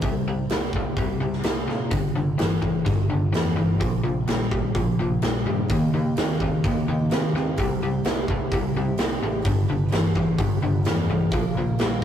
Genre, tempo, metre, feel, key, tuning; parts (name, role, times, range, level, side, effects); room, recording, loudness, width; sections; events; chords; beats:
classic rock; 128 BPM; 4/4; straight; A4 = 440 Hz
crunchy overdriven guitar; riff; 0.0-12.0 s; G2 to C4; -32 LUFS; right 2 dB
overdriven electric guitar; riff; 0.0-12.0 s; G2 to C4; -25 LUFS; left 2 dB
growling fingered electric bass; bass; 0.0-12.0 s; G1 to C3; -30 LUFS; equal; overdrive
big rock drum kit; drums; 0.0-12.0 s; hi-hat, kick drum, snare drum; -25 LUFS; equal
picked swing-style acoustic guitar; accompaniment; 5.7-12.0 s; G2 to B4; -36 LUFS; right 4 dB
wet booth ambience, RT60 0.2 s; rough rehearsal-room recording; -21 LUFS; side -9 dB against mid
0.0-12.0 A section
0.0 C5; 1.9 G5; 3.8 Bb5; 5.7 Eb; 7.6 C; 9.5 G; 11.3 Bb
| 0.03 0.51 0.98 1.45 | 1.92 2.40 2.87 3.34 | 3.81 4.29 4.76 5.23 | 5.70 6.17 6.64 7.11 | 7.58 8.05 8.52 8.99 | 9.46 9.93 10.39 10.86 | 11.33 11.80